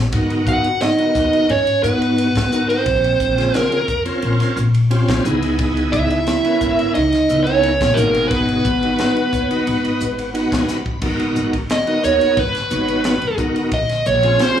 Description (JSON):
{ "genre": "electric jazz fusion", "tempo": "88 BPM", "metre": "4/4", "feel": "straight", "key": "G# minor", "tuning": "A4 = 441 Hz", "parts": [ { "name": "upright bass", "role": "bass", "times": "0.0-14.4 s", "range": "G#1 to G#2", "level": "-22 LUFS", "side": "left 1 dB", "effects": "none" }, { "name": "bright tonewheel organ", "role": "accompaniment", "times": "0.1-14.6 s", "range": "B2 to B5", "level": "-21 LUFS", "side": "equal", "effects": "slow rotary speaker, chorus vibrato, slapback echo" }, { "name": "crisp fusion drum kit", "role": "drums", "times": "0.1-14.6 s", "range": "crash cymbal, hi-hat, kick drum, ride cymbal, snare drum, splash cymbal", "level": "-24 LUFS", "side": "equal", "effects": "none" }, { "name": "dark smooth lead guitar", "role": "melody", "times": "0.5-14.6 s", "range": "A#4 to F#5", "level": "-18 LUFS", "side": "right 1 dB", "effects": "overdrive, slapback echo" }, { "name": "warm trombone", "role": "second line", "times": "0.5-10.3 s", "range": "A#3 to F#4", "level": "-20 LUFS", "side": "right 2 dB", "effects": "none" } ], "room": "light reverb", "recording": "live gig heard through the venue's PA, club reverb, small room ambience", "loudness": "-15 LUFS", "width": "side -9 dB against mid", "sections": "0.0-11.0 A section; 11.0-14.6 B section", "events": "tonewheel organ fill 9.0-11.0; drum fill 10.7-11.0; lead electric guitar solo 11.0-14.6", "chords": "0.1 G#m9; 2.9 A#m9; 5.2 C#m9; 8.0 G#m7; 11.0 G#m9; 13.7 A#m9", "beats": "| 0.14 0.82 1.50 2.18 | 2.86 3.54 4.23 4.91 | 5.59 6.27 6.95 7.63 | 8.31 8.99 9.67 10.35 | 11.03 11.70 12.38 13.05 | 13.73 14.40" }